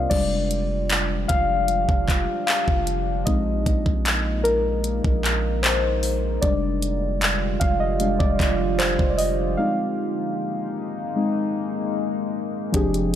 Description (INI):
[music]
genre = contemporary R&B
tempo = 76 BPM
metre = 4/4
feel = straight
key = F dorian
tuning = A4 = 440 Hz
[part]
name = muted felt-like synth keys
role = accompaniment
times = 0.0-13.2 s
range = C3 to F5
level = -24 LUFS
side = left 2 dB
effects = chorus
[part]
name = deep dark ambient pad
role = sustained chords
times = 0.0-13.2 s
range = D3 to G5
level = -29 LUFS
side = right 1 dB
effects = chorus, built-in reverb
[part]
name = long sustained 808-style bass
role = bass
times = 0.0-13.2 s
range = F1 to Bb1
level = -26 LUFS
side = equal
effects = none
[part]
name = smooth R&B drum kit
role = drums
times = 0.1-13.1 s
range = crash cymbal, handclaps, hi-hat, kick drum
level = -23 LUFS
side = equal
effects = none
[sound]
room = light reverb, digital ambience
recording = none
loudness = -20 LUFS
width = side -10 dB against mid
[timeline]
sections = 0.1-12.7 A section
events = synth keys solo 0.1-12.7; break 9.6-12.7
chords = 0.1 Fm69; 3.3 Bb7sus4; 6.4 Fm69; 9.6 Bb7sus4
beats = | 0.11 0.90 1.69 2.48 | 3.27 4.06 4.85 5.64 | 6.43 7.22 8.01 8.80 | 9.59 10.38 11.16 11.96 | 12.74